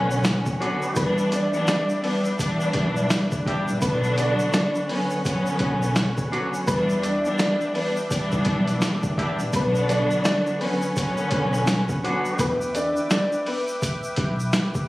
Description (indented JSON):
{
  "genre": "hip hop, boom-bap hip-hop",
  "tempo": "84 BPM",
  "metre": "4/4",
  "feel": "swing 61% on 16ths",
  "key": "unclear",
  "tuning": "A4 = 440 Hz",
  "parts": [
    { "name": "dark upright piano", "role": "melody", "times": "0.0-14.5 s", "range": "B3 to D5", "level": "-26 LUFS", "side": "equal", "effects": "high-pass filter, low-pass filter, slapback echo" },
    { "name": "warm studio string section", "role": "accompaniment", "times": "0.0-12.4 s", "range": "D3 to D4", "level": "-24 LUFS", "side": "equal", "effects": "high-pass filter, low-pass filter" },
    { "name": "warm analog pad", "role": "sustained chords", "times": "0.0-14.9 s", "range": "B4 to D6", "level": "-34 LUFS", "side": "equal", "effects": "chorus, high-pass filter, low-pass filter" },
    { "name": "upright bass", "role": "bass", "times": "0.0-14.5 s", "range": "A#1 to E2", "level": "-28 LUFS", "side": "equal", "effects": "none" },
    { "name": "tube shaker", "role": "percussion", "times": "0.1-14.9 s", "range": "none", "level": "-40 LUFS", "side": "right 1 dB", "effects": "none" },
    { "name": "boom bap sampler-style drum kit", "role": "drums", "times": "0.2-14.9 s", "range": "hi-hat, kick drum, snare drum", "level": "-26 LUFS", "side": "equal", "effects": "none" },
    { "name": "dark horn section", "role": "stabs", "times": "0.6-12.5 s", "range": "F#3 to G4", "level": "-28 LUFS", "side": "equal", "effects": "high-pass filter, low-pass filter, slapback echo" }
  ],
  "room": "light reverb",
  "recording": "recorded on a phone in the room, studio reverb, vinyl crackle, compression",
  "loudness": "-21 LUFS",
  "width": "side -18 dB against mid",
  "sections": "0.0-14.9 A section",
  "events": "none",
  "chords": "0.0 Bmadd9; 1.0 Em7; 3.8 Bmadd9; 6.7 Em7; 9.5 Bmadd9; 12.4 Em7"
}